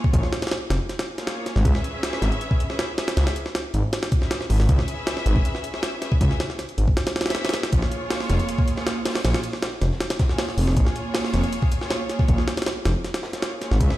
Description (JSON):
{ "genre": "drum and bass, jungle", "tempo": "158 BPM", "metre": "4/4", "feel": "straight", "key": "unclear", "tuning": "A4 = 440 Hz", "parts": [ { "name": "rich studio string section", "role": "sustained chords", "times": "0.0-14.0 s", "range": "Bb3 to Fb5", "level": "-30 LUFS", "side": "equal", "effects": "none" }, { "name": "jungle sampler-style drum kit", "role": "drums", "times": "0.0-14.0 s", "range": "hi-hat, kick drum, snare drum", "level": "-23 LUFS", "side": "equal", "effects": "small room ambience" }, { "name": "detuned saw bass", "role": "bass", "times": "0.1-13.9 s", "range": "F1 to Db2", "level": "-21 LUFS", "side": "equal", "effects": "none" }, { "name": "crunchy breakbeat drum kit", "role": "drums", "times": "7.7-13.9 s", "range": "hi-hat, shaker, snare drum", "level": "-38 LUFS", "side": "left 2 dB", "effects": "none" } ], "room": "small room ambience", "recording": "played on a big sound system in a bare room, stone room reverb, faint mains hum", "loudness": "-21 LUFS", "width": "side -16 dB against mid", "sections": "0.0-14.0 A section", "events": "kick drops out 7.0-7.7", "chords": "0.0 Bbm7; 1.7 Dbm7; 7.7 Bbm7" }